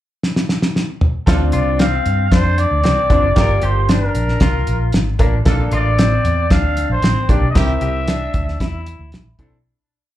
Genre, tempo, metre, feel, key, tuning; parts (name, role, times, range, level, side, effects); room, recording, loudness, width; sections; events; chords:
uptempo 1960s-style soul; 115 BPM; 4/4; straight; D minor; A4 = 440 Hz
cloth-damped thuddy drum kit; drums; 0.2-9.5 s; hi-hat, kick drum, snare drum, toms; -16 LUFS; equal
warm horn section; second line; 1.3-7.7 s; C4 to Bb4; -25 LUFS; right 2 dB; slapback echo
bright upright piano; accompaniment; 1.3-9.5 s; Bb3 to Bb4; -23 LUFS; left 2 dB; slapback echo
vintage muted fingered electric bass; bass; 1.3-9.6 s; F1 to G2; -18 LUFS; equal
growling trumpet; melody; 1.5-9.1 s; Bb4 to F5; -20 LUFS; equal; slapback echo
semi-hollow electric guitar; riff; 1.5-9.6 s; C4 to G4; -26 LUFS; left 6 dB; spring reverb, slapback echo
light reverb; live gig heard through the venue's PA, club reverb; -14 LUFS; side -13 dB against mid
0.0-1.3 pickup bar; 1.3-9.7 verse
drum fill 0.2-1.3; fade-out 7.6-9.7
0.0 N.C.; 1.3 Dm7; 3.4 Gm7; 5.5 Bbmaj7; 7.6 C7